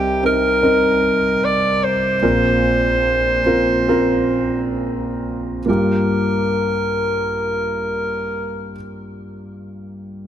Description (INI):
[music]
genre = pop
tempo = 65-77 BPM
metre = 4/4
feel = straight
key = G minor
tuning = A4 = 440 Hz
[part]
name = clear alto saxophone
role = melody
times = 0.0-8.7 s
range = G4 to D5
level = -18 LUFS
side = equal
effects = none
[part]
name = warm concert grand piano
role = accompaniment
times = 0.0-10.3 s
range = Bb1 to Bb4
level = -19 LUFS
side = right 1 dB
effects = none
[sound]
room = light reverb, small room ambience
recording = none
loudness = -16 LUFS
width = side -10 dB against mid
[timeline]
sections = 0.0-5.7 A section; 5.7-9.4 B section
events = slowing down 0.0-5.7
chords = 0.0 Cm7; 2.2 Bbsus2; 5.7 Gm7